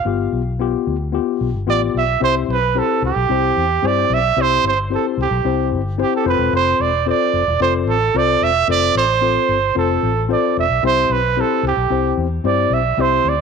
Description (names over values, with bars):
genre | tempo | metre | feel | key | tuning
uptempo 1960s-style soul | 111 BPM | 4/4 | straight | C major | A4 = 441 Hz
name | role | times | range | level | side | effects
breathy trumpet | melody | 0.0-13.4 s | G4 to E5 | -17 LUFS | right 8 dB | none
tine electric piano | accompaniment | 0.1-13.3 s | B3 to C5 | -21 LUFS | left 13 dB | none
vintage muted fingered electric bass | bass | 0.1-13.4 s | E1 to G2 | -22 LUFS | left 2 dB | none
room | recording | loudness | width
moderate spring reverb, RT60 1.7 s, small room ambience | 1960s-style stereo with parts hard left and right | -15 LUFS | side -6 dB against mid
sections
0.1-2.2 A section; 2.2-13.4 B section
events
none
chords
0.1 G7; 2.2 C; 6.3 F; 10.8 C